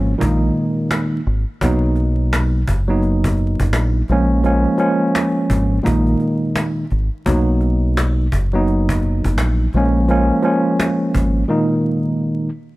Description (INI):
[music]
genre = hip hop, boom-bap hip-hop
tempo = 85 BPM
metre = 4/4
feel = swing 60% on 16ths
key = unclear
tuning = A4 = 440 Hz
[part]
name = mellow tine electric piano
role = accompaniment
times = 0.0-12.5 s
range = Bb2 to Eb4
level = -17 LUFS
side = equal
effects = medium stereo tremolo, cassette tape, high-pass filter, low-pass filter
[part]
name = deep dub fingered electric bass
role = bass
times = 0.0-11.4 s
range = F#1 to B1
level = -17 LUFS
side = equal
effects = none
[part]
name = cajon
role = drums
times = 0.2-11.3 s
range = none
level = -24 LUFS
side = equal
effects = none
[sound]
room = light reverb, small room ambience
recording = vinyl crackle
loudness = -15 LUFS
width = side -19 dB against mid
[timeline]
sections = 0.0-12.8 A section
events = break 0.0-1.6, 11.5-12.8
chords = 0.2 Ebsus4/Bb; 1.6 Bmaj7; 4.1 Bbm7; 5.8 Ebsus4/Bb; 7.3 Bmaj7; 9.7 Bbm7; 11.5 Ebsus4/Bb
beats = 0.20 0.91 | 1.61 2.32 3.03 3.73 | 4.44 5.14 5.85 6.55 | 7.26 7.97 8.67 9.38 | 10.09 10.79 11.50 12.20